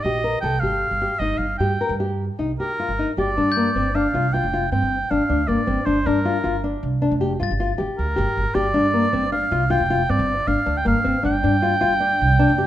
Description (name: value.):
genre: contemporary instrumental, chamber music in an uneven meter.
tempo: 156 BPM.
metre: 7/4.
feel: straight.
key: G minor.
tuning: A4 = 440 Hz.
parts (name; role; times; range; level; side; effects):
warm oboe; melody; 0.0-12.7 s; Bb4 to G5; -22 LUFS; right 1 dB; none.
upright bass; bass; 0.0-12.7 s; F1 to G2; -24 LUFS; right 2 dB; none.
nylon-string guitar; arpeggios; 0.1-12.7 s; Bb3 to Bb4; -22 LUFS; left 3 dB; none.
glockenspiel with soft plastic mallets; texture; 3.5-8.6 s; G6 to A6; -32 LUFS; left 5 dB; none.
room: light reverb.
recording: none.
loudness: -18 LUFS.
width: side -12 dB against mid.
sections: 0.0-3.2 A section; 3.2-12.7 B section.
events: none.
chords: 0.0 Eb/G; 3.2 G7(no3).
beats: 0.06 | 0.44 0.82 1.21 1.60 1.99 2.38 2.78 | 3.17 3.56 3.95 4.33 4.72 5.11 5.49 | 5.87 6.26 6.64 7.02 7.40 7.79 8.17 | 8.55 8.94 9.32 9.70 10.08 10.47 10.85 | 11.24 11.62 12.01 12.40.